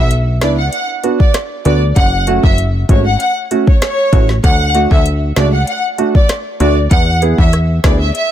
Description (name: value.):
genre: dancehall.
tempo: 97 BPM.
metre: 4/4.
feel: straight.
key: B dorian.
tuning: A4 = 437 Hz.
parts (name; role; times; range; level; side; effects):
warm studio violin section; melody; 0.0-8.3 s; C#5 to F#5; -17 LUFS; left 1 dB; digital delay.
plucky analog bass; bass; 0.0-8.1 s; F#1 to E2; -14 LUFS; equal; none.
afro-pop drum kit; drums; 0.1-8.3 s; hi-hat, kick drum, rim click, snare drum; -12 LUFS; equal; none.
warm baby grand piano; accompaniment; 0.4-8.0 s; A3 to G#4; -19 LUFS; right 4 dB; sidechain pumping.
room: little or no reverb.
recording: none.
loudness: -10 LUFS.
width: side -11 dB against mid.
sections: 0.0-8.3 A section.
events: none.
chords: 0.0 Bm; 2.0 F#m; 4.4 D; 6.9 E.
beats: 0.11 0.73 1.34 | 1.96 2.58 3.20 3.82 | 4.44 5.05 5.67 6.29 | 6.91 7.53 8.15.